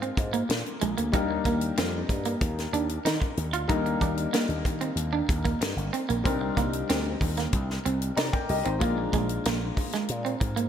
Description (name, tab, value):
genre	polished 1980s jazz-funk pop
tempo	94 BPM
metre	4/4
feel	straight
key	Eb major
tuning	A4 = 441 Hz
part	warm concert grand piano	accompaniment	0.0-10.7 s	G3 to Bb5	-32 LUFS	left 4 dB	wide subtle chorus
part	electric guitar at the edge of break-up	riff	0.0-10.7 s	Ab3 to F4	-30 LUFS	right 5 dB	lush chorus
part	slap bass with an envelope filter	bass	0.0-10.7 s	G1 to Eb3	-31 LUFS	equal	none
part	tight funk drum kit	drums	0.0-10.7 s	hi-hat, kick drum, snare drum	-29 LUFS	equal	gated reverb
room	moderate plate reverb, RT60 2.7 s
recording	bright 1980s-style digital production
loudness	-25 LUFS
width	side -9 dB against mid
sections	0.0-10.7 A section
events	none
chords	0.0 Bb7; 1.1 Ebmaj7; 6.3 Cm9; 8.8 Bb7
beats	0.49 | 1.13 1.77 2.41 3.05 | 3.69 4.33 4.97 5.62 | 6.25 6.89 7.54 8.18 | 8.82 9.46 10.10